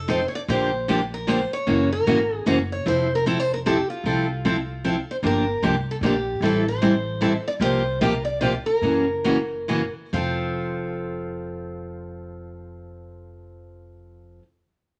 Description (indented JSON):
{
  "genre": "acoustic string swing (jazz manouche)",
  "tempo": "129-152 BPM",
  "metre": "3/4",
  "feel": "swing 61% on 8ths",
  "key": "F major",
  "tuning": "A4 = 438 Hz",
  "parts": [
    { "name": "picked acoustic archtop guitar", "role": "melody", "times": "0.0-14.4 s", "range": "F4 to D5", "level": "-28 LUFS", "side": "equal", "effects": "none" },
    { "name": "upright bass", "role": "bass", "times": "0.0-14.4 s", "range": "F1 to C2", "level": "-33 LUFS", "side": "equal", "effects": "none" },
    { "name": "picked steel-string acoustic guitar", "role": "accompaniment", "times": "0.1-14.4 s", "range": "C3 to A4", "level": "-25 LUFS", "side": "equal", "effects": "none" }
  ],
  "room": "light reverb",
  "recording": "none",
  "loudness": "-23 LUFS",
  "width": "mono",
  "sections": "0.0-5.2 A section; 5.2-10.1 B section; 10.1-12.9 C section",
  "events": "slowing down 7.6-10.1",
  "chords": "0.5 Bb6; 1.7 Gb9; 2.9 Fmaj7; 5.2 Gm7; 6.4 Am7; 7.6 C7sus4; 8.8 Gb7; 10.1 F",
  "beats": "0.09 | 0.48 0.88 1.27 | 1.67 2.07 2.46 | 2.86 3.25 3.65 | 4.04 4.44 4.83 | 5.23 5.63 6.02 | 6.42 6.81 7.21 | 7.60 8.00 8.40 | 8.81 9.24 9.67 | 10.13 10.59 11.06 | 11.53 11.99 12.46"
}